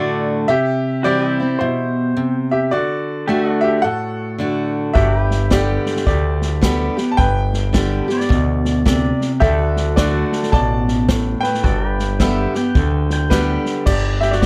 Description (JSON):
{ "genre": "honky-tonk and classic country", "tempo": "108 BPM", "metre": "4/4", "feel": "swing 62% on 8ths", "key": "G major", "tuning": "A4 = 440 Hz", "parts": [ { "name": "pedal steel guitar", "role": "second line", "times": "0.0-0.4, 8.1-13.7 s", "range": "D5 to G5", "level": "-29 LUFS", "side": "equal", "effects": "none" }, { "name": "picked steel-string acoustic guitar", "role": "accompaniment", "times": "0.0-14.5 s", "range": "G2 to G4", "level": "-22 LUFS", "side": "equal", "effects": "none" }, { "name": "pedal steel guitar", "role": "sustained chords", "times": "0.0-13.9 s", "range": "F#4 to E5", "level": "-30 LUFS", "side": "equal", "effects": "none" }, { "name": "bright upright piano", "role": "melody", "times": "0.5-14.5 s", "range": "D4 to A5", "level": "-23 LUFS", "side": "equal", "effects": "none" }, { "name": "growling FM bass", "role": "bass", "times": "5.0-14.5 s", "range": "G1 to D2", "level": "-22 LUFS", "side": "equal", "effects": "none" }, { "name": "vintage drum kit", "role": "drums", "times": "5.0-14.5 s", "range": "crash cymbal, hi-hat, kick drum, snare drum", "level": "-22 LUFS", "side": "equal", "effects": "none" } ], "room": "light reverb", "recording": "none", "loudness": "-18 LUFS", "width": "mono", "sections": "0.0-13.9 A section", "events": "none", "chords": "0.5 C; 2.7 D; 5.0 G; 9.4 D; 11.6 G; 13.9 G5" }